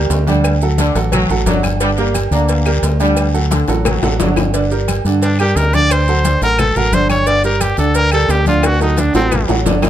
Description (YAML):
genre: latin, salsa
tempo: 176 BPM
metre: 4/4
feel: straight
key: G harmonic minor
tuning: A4 = 441 Hz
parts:
  - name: bright baby grand piano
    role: accompaniment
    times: 0.0-9.9 s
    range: D3 to D5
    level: -19 LUFS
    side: right 4 dB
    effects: none
  - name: deep dub fingered electric bass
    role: bass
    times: 0.0-9.9 s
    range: G1 to G2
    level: -16 LUFS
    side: equal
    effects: none
  - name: congas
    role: percussion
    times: 0.1-9.9 s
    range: none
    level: -22 LUFS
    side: left 4 dB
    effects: none
  - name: cowbell and bongos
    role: percussion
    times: 0.1-9.9 s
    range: none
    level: -23 LUFS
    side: left 6 dB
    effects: none
  - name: guiro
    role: percussion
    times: 0.1-9.9 s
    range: none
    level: -31 LUFS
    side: left 6 dB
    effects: none
  - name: maracas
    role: percussion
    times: 0.1-9.9 s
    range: none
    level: -28 LUFS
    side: right 6 dB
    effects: none
  - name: timbales and agogo bells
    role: percussion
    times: 0.1-9.9 s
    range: none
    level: -25 LUFS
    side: right 4 dB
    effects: none
  - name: bright trombone section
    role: second line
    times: 0.3-4.4 s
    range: D3 to Bb3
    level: -22 LUFS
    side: equal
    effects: none
  - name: claves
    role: percussion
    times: 0.4-9.9 s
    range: none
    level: -28 LUFS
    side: left 8 dB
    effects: none
  - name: bright trumpet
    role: melody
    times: 5.2-9.5 s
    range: C4 to D5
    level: -16 LUFS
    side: left 1 dB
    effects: none
room: little or no reverb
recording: close, detailed microphones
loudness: -12 LUFS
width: side -11 dB against mid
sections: 0.0-4.5 A section; 4.5-9.9 B section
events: drum fill 3.7-4.5, 8.6-9.9; trumpet solo 4.5-9.9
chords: 0.4 D; 1.8 Gm; 3.2 D; 4.5 Gm; 5.9 D7; 7.3 Gm; 8.6 D7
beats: 0.10 | 0.44 0.78 1.12 1.47 | 1.81 2.15 2.49 2.83 | 3.17 3.51 3.85 4.20 | 4.54 4.88 5.22 5.56 | 5.91 6.25 6.59 6.93 | 7.27 7.61 7.96 8.30 | 8.64 8.98 9.32 9.66